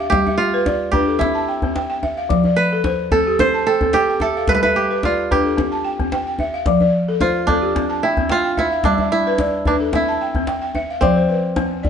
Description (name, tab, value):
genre	west african traditional, West African string and xylophone music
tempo	110 BPM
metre	4/4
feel	straight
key	F lydian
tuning	A4 = 441 Hz
part	kora	melody	0.0-11.9 s	C4 to C5	-19 LUFS	right 3 dB	none
part	balafon	arpeggios	0.0-11.9 s	F3 to A5	-19 LUFS	left 2 dB	none
part	djembe	percussion	0.1-11.9 s	none	-23 LUFS	equal	none
room	moderate stone room reverb, RT60 1.1 s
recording	band playing live in one room, nothing above 10.6 kHz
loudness	-16 LUFS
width	side -7 dB against mid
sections	0.0-11.0 A section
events	none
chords	0.1 G; 1.2 C; 2.3 F; 3.4 C; 4.5 G; 5.6 C; 6.7 F; 7.7 C; 8.8 G; 9.9 C; 11.0 F5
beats	| 0.11 0.66 1.21 1.75 | 2.30 2.84 3.39 3.93 | 4.48 5.02 5.57 6.11 | 6.66 7.20 7.75 8.29 | 8.84 9.38 9.93 10.47 | 11.01 11.56